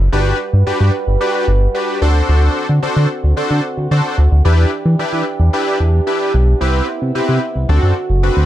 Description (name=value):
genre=pop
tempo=111 BPM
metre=4/4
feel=straight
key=unclear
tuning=A4 = 440 Hz
part: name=chorused synth bass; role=bass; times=0.0-8.5 s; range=F#1 to E3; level=-12 LUFS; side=equal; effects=none
part: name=big bright polysynth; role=accompaniment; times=0.1-8.5 s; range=C4 to C5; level=-19 LUFS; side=left 1 dB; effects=chorus
part: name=dark brass ensemble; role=sustained chords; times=0.1-8.5 s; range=C3 to B4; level=-22 LUFS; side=right 3 dB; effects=none
room=small room ambience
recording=dark, warm production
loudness=-12 LUFS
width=side -13 dB against mid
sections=0.0-8.5 A section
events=none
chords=0.1 Gmaj7; 2.0 D7; 4.5 Em7; 6.6 Cmaj7; 7.7 D7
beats=| 0.13 0.67 1.21 1.75 | 2.29 2.83 3.37 3.91 | 4.45 4.99 5.53 6.07 | 6.61 7.15 7.69 8.23